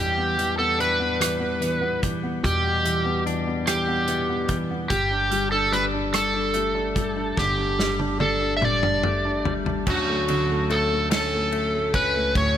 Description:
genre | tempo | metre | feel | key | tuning
six-eight pop ballad | 48 BPM (dotted quarters) | 6/8 | straight | D major | A4 = 440 Hz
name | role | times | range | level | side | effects
overdriven slide guitar | melody | 0.0-12.6 s | F#4 to E5 | -23 LUFS | equal | none
felt-muted upright piano | accompaniment | 0.0-12.6 s | A2 to D4 | -29 LUFS | right 1 dB | none
direct-recorded clean electric guitar | arpeggios | 0.0-12.6 s | F#3 to D4 | -31 LUFS | left 7 dB | ping-pong delay
upright bass | bass | 0.0-12.6 s | G1 to E2 | -30 LUFS | equal | none
natural country drum kit | drums | 0.4-12.5 s | crash cymbal, hi-hat, kick drum, ride cymbal, rim click, snare drum, toms | -28 LUFS | equal | none
room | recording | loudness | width
light reverb, studio reverb | none | -21 LUFS | side -10 dB against mid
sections
0.0-9.9 A section; 9.9-12.6 B section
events
drum fill 7.4-9.9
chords
0.0 Em7; 4.9 Gsus2; 9.9 Dmaj7

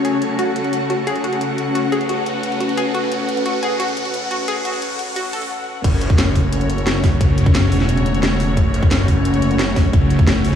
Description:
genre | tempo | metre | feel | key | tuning
dark technical drum and bass | 176 BPM | 4/4 | straight | F# minor | A4 = 441 Hz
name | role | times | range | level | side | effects
rich symphonic string section | sustained chords | 0.0-10.6 s | C#3 to F#5 | -22 LUFS | left 2 dB | sidechain pumping
analog pluck | arpeggios | 0.0-5.4 s | F#4 to A4 | -24 LUFS | left 1 dB | chorus, sidechain pumping, digital delay
drum and bass drum kit | drums | 0.0-10.6 s | crash cymbal, hi-hat, snare drum | -23 LUFS | left 1 dB | none
riser | sound effects | 0.0-5.5 s | none | -30 LUFS | right 1 dB | none
granular cloud pad | texture | 0.0-10.6 s | F#4 to A5 | -27 LUFS | right 2 dB | built-in reverb, sidechain pumping
phased detuned saw bass | bass | 5.8-10.6 s | E1 to F#1 | -17 LUFS | equal | phaser, overdrive, sidechain pumping
electronic kick drum | drums | 5.8-10.3 s | none | -14 LUFS | equal | none
room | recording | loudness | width
light reverb, digital ambience | played on a big sound system in a bare room, large studio reverb, high-pass filter, small room ambience | -16 LUFS | side -8 dB against mid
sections
0.0-5.8 A section; 5.8-10.6 B section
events
build-up 0.0-5.8; riser 0.0-5.5; filter sweep 0.0-5.8; break 5.5-5.8; drop 5.8-10.6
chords
0.0 F#m

